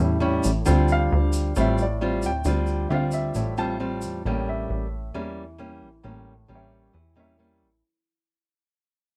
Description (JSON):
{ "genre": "bossa nova", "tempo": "134 BPM", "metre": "4/4", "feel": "straight", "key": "D minor", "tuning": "A4 = 440 Hz", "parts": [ { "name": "nylon-string guitar", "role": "accompaniment", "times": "0.0-7.8 s", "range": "A2 to F4", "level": "-28 LUFS", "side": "equal", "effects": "none" }, { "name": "plucky analog bass", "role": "bass", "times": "0.0-7.8 s", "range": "A1 to E2", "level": "-27 LUFS", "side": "equal", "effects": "none" }, { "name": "tube shaker", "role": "percussion", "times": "0.4-4.2 s", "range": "none", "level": "-41 LUFS", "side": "equal", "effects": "none" }, { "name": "warm baby grand piano", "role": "melody", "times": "0.9-7.7 s", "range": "E4 to A5", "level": "-33 LUFS", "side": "equal", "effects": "none" } ], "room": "light reverb", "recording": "dark, warm production", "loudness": "-24 LUFS", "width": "mono", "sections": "0.7-7.8 A section", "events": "fade-out 0.7-7.8; grand piano solo 0.7-7.8", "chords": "0.0 A7; 0.7 Dm11; 4.2 A7b9" }